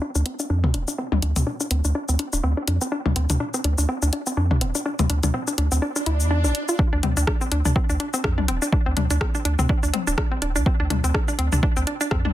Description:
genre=minimal techno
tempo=124 BPM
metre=4/4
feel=swing 57% on 16ths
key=D minor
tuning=A4 = 440 Hz
part: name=hollow square pluck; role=riff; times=0.0-12.3 s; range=C4 to F4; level=-26 LUFS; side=equal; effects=chorus, sidechain pumping, dub echo
part: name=saturated sub bass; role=bass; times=0.2-12.3 s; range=D1 to F2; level=-21 LUFS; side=equal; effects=sidechain pumping
part: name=punchy analog drum machine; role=drums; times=0.2-12.2 s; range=cabasa, hi-hat, rim click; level=-27 LUFS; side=left 2 dB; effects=overdrive
part: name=electronic toms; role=percussion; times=0.6-12.3 s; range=none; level=-27 LUFS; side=left 4 dB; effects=none
part: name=swell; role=sound effects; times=6.0-6.8 s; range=none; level=-28 LUFS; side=right 1 dB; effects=none
part: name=electronic kick drum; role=drums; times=6.8-12.2 s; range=none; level=-22 LUFS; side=equal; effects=overdrive
room=light reverb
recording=dense, heavily limited modern master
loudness=-20 LUFS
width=side -14 dB against mid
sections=0.0-6.8 A section; 6.8-12.3 B section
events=filter sweep on synth arpeggio sound 0.0-6.8; swell 6.0-6.8; drop 6.8-12.3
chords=0.0 D7(no3)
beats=0.02 0.50 | 0.98 1.47 1.95 2.44 | 2.92 3.40 3.89 4.37 | 4.85 5.34 5.82 6.31 | 6.79 7.27 7.76 8.24 | 8.72 9.21 9.69 10.18 | 10.66 11.14 11.63 12.11

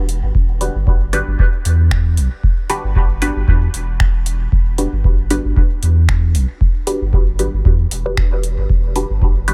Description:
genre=dub techno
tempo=115 BPM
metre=4/4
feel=swing 55% on 16ths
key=E minor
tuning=A4 = 441 Hz
part: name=warm sub bass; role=bass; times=0.0-9.5 s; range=E1 to E2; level=-19 LUFS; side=equal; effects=sidechain pumping
part: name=booming analog drum machine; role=drums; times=0.1-9.5 s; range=finger snaps, hi-hat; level=-27 LUFS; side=equal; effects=none
part: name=electronic kick drum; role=drums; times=0.3-9.3 s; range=none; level=-18 LUFS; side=equal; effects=none
part: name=filtered dub chord stab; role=stabs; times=0.6-9.5 s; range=D4 to B4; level=-26 LUFS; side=equal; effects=phaser, sidechain pumping, dub echo
room=digital ambience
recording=none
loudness=-16 LUFS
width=mono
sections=0.3-9.5 A section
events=none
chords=0.3 Em7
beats=| 0.35 0.87 1.39 1.91 | 2.44 2.96 3.48 4.00 | 4.52 5.04 5.57 6.09 | 6.61 7.13 7.65 8.17 | 8.70 9.22

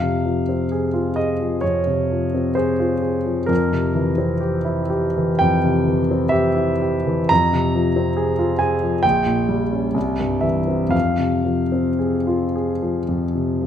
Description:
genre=classical, romantic nocturne for solo piano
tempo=55-70 BPM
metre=4/4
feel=rubato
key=F minor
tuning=A4 = 438 Hz
part: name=warm concert grand piano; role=solo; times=0.0-13.7 s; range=Bb1 to Bb5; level=-17 LUFS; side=equal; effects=none
room=moderate recital hall reverb, RT60 1.6 s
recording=none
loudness=-17 LUFS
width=side -9 dB against mid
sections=0.0-13.7 A section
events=none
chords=0.0 Fm; 3.5 C7/F; 7.3 Fm; 9.0 Gdim/Bb; 10.0 C; 10.9 Fm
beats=0.73 1.66 2.58 | 3.50 4.42 5.43 6.34 | 7.30 8.17 9.04 9.96 | 10.94 12.00 13.08

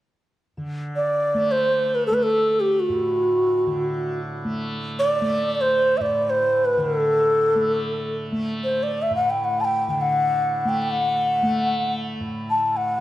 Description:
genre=indian classical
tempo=free time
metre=none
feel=none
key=A raga bageshri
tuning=A4 = 440 Hz
part: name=tanpura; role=drone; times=0.6-13.0 s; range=A2 to A3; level=-28 LUFS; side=equal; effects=none
part: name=mellow bansuri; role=melody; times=1.0-13.0 s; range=F#4 to A5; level=-20 LUFS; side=equal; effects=none
room=moderate recital hall reverb, RT60 1.6 s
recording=dark, warm production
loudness=-19 LUFS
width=side -14 dB against mid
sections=0.6-13.0 A section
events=none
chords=none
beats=free time

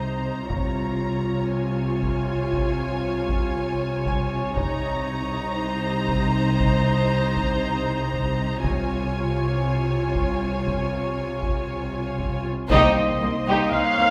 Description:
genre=cinematic, suspense film score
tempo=59 BPM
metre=4/4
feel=straight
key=C phrygian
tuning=A4 = 441 Hz
part: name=muted studio violin section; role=melody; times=0.0-14.1 s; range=C5 to Bb5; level=-34 LUFS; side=equal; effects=none
part: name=muted studio violin section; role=second line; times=0.0-14.1 s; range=Bb3 to Db5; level=-32 LUFS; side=equal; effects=none
part: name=muted studio viola section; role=accompaniment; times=0.0-14.1 s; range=Eb4 to F5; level=-30 LUFS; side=equal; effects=none
part: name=muted studio double bass section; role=bass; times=0.0-13.8 s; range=C2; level=-31 LUFS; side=equal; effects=none
part: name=muted symphonic cello section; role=bass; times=0.0-14.1 s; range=C2 to C3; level=-30 LUFS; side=equal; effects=none
part: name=Celtic harp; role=texture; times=0.0-7.1 s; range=Ab5 to C6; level=-40 LUFS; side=equal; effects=none
part: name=taiko ensemble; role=drums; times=0.5-13.7 s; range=none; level=-32 LUFS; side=equal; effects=none
part: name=warm French horn section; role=sustained chords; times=12.7-14.1 s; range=Bb3 to Eb4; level=-29 LUFS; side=equal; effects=none
part: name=muted studio violin section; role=texture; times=12.7-14.1 s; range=C6 to F#6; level=-37 LUFS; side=equal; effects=none
room=wet scoring stage reverb, RT60 2.0 s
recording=none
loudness=-24 LUFS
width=mono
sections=0.0-12.7 A section; 12.7-14.1 A section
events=band accent 12.7-13.7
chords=0.0 Cm7; 0.5 Db/C; 4.6 Cm7; 8.6 Db/C; 12.7 Cm7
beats=| 0.50 1.52 2.54 3.55 | 4.57 5.59 6.60 7.62 | 8.64 9.65 10.67 11.69 | 12.71 13.72

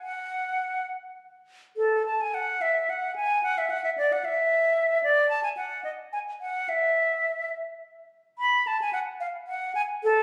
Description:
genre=classical, baroque-style fantasia for unaccompanied flute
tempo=64-76 BPM (dotted quarters)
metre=6/8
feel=rubato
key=unclear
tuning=A4 = 440 Hz
part: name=silver concert flute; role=solo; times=0.0-10.2 s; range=A4 to B5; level=-26 LUFS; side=equal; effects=none
room=wet recital hall reverb, RT60 1.7 s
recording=recorded on a phone in the room, club reverb, compression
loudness=-27 LUFS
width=mono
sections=0.0-1.8 A section; 1.8-10.2 A section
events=none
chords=none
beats=| 0.01 0.88 | 1.77 2.62 | 3.44 4.24 | 5.04 5.85 | 6.69 7.54 | 8.39 9.21 | 10.05

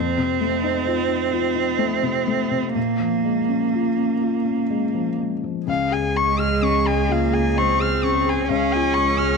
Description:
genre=neoclassical piano and strings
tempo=64 BPM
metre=3/4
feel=rubato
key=Db major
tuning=A4 = 436 Hz
part: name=clear cello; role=second line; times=0.0-9.4 s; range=Ab3 to Db4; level=-22 LUFS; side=right 9 dB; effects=none
part: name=felt-muted upright piano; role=accompaniment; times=0.0-9.4 s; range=Db2 to Ab4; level=-24 LUFS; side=left 10 dB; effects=none
part: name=dark violin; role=melody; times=5.7-9.4 s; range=F5 to F6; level=-22 LUFS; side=left 5 dB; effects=none
part: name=clear viola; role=accompaniment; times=5.7-9.4 s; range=Ab4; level=-30 LUFS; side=right 11 dB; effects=none
part: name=rich double bass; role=bass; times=5.7-9.4 s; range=Db2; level=-26 LUFS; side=equal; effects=none
room=moderate echo chamber reverb, RT60 1.7 s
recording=1960s-style stereo with parts hard left and right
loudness=-18 LUFS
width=side -4 dB against mid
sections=0.0-5.7 A section; 5.7-9.4 B section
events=none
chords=0.0 F7; 2.8 Bbm7; 5.7 Db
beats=0.87 1.81 | 2.76 3.73 4.70 | 5.68 6.63 7.57 | 8.50

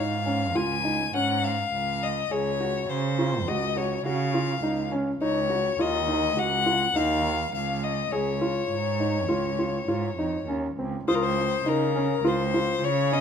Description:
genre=contemporary instrumental, chamber music in an uneven meter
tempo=103 BPM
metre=5/4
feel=straight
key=Db major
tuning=A4 = 440 Hz
part: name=rich violin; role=melody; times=0.0-13.2 s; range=Bb4 to Ab5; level=-27 LUFS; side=left 7 dB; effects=none
part: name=dark grand piano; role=arpeggios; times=0.0-13.2 s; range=C4 to Ab4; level=-28 LUFS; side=equal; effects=none
part: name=warm cello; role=bass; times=0.0-13.2 s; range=Db2 to Db3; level=-29 LUFS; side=right 6 dB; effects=none
part: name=glockenspiel with brass mallets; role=texture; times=11.1-12.1 s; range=Eb6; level=-34 LUFS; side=left 12 dB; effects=none
room=moderate recital hall reverb, RT60 1.5 s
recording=minimal, uncompressed stereo recording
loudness=-23 LUFS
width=side -7 dB against mid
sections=0.0-11.1 A section; 11.1-13.2 B section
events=none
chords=0.0 Dbadd9; 2.3 Gb5/Db; 5.2 Dbadd9; 11.1 Dbmaj13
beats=0.56 1.14 1.73 | 2.31 2.90 3.48 4.06 4.64 | 5.22 5.80 6.38 6.96 7.54 | 8.12 8.71 9.29 9.88 10.48 | 11.08 11.66 12.25 12.83

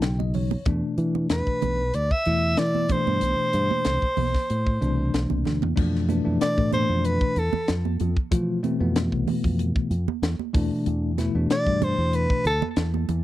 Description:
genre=electric jazz fusion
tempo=94 BPM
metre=4/4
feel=straight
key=unclear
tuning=A4 = 441 Hz
part: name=bell-like tine electric piano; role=accompaniment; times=0.0-12.5 s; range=B2 to G5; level=-26 LUFS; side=left 2 dB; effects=medium stereo tremolo
part: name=fingered electric bass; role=bass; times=0.0-13.2 s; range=B1 to F3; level=-25 LUFS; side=equal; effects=none
part: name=tight funk drum kit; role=drums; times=0.0-13.2 s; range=crash cymbal, hi-hat, kick drum, snare drum, toms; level=-26 LUFS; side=equal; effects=none
part: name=congas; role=percussion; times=0.2-13.2 s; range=none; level=-31 LUFS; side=right 13 dB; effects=none
part: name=bright soprano saxophone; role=melody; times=1.3-12.7 s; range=A4 to E5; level=-25 LUFS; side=equal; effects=none
room=little or no reverb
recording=dry, close 1970s-style studio recording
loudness=-21 LUFS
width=side -14 dB against mid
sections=0.0-5.8 A section; 5.8-13.2 B section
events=tine electric piano fill 0.0-0.7; drum fill 5.5-5.8; soprano saxophone solo 5.8-13.2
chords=0.0 B; 0.7 E5; 2.9 Cmaj9; 5.8 Fmaj7; 10.5 E7(no3)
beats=0.03 | 0.67 1.30 1.94 2.58 | 3.22 3.86 4.50 5.14 | 5.77 6.41 7.05 7.68 | 8.32 8.96 9.59 10.23 | 10.86 11.50 12.13 12.77

